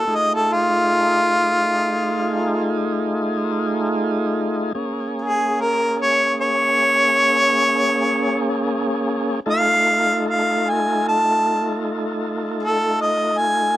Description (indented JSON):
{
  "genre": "blues",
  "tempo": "51 BPM (dotted quarters)",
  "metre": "12/8",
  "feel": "straight",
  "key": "unclear",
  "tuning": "A4 = 440 Hz",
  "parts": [
    { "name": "warm harmonica", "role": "melody", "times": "0.0-13.7 s", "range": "F4 to A5", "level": "-17 LUFS", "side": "equal", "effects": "none" },
    { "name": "tonewheel organ", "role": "sustained chords", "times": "0.0-13.8 s", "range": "A3 to A4", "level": "-22 LUFS", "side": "equal", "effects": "slow rotary speaker, overdrive" }
  ],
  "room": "light reverb",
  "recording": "dry, close 1970s-style studio recording",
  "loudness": "-17 LUFS",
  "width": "side -14 dB against mid",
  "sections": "0.0-13.8 A section",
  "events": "none",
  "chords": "0.1 F7#9; 4.8 Bbm7; 9.5 F7"
}